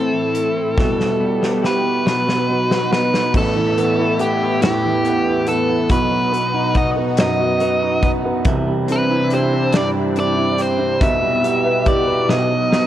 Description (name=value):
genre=six-eight pop ballad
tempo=47 BPM (dotted quarters)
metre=6/8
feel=straight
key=unclear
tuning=A4 = 440 Hz
part: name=biting lead guitar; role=melody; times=0.0-12.9 s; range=G4 to E5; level=-20 LUFS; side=equal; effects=overdrive
part: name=warm baby grand piano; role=accompaniment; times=0.0-12.9 s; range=A1 to B4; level=-20 LUFS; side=right 3 dB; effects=none
part: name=lush unison pad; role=sustained chords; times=0.0-12.9 s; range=A2 to G4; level=-23 LUFS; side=left 1 dB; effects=chorus, phaser
part: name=twelve-string electric guitar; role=arpeggios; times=0.0-12.9 s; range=E3 to E4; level=-26 LUFS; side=left 5 dB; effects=spring reverb
part: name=modern studio drum kit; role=drums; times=0.3-12.9 s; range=crash cymbal, hi-hat, kick drum, snare drum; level=-21 LUFS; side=left 1 dB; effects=none
room=light reverb, small room ambience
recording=worn, warbling old tape, cassette tape, warbly pitch drift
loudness=-15 LUFS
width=side -12 dB against mid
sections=0.0-3.3 A section; 3.3-12.9 B section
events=drum fill 0.8-3.3, 12.3-12.9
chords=0.0 Am; 0.8 Em/B; 2.1 B; 3.3 Asus2; 5.9 B; 8.5 Cadd9; 11.0 Em/B; 12.3 B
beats=| 0.78 2.06 | 3.34 4.62 | 5.90 7.18 | 8.46 9.73 | 11.01 12.29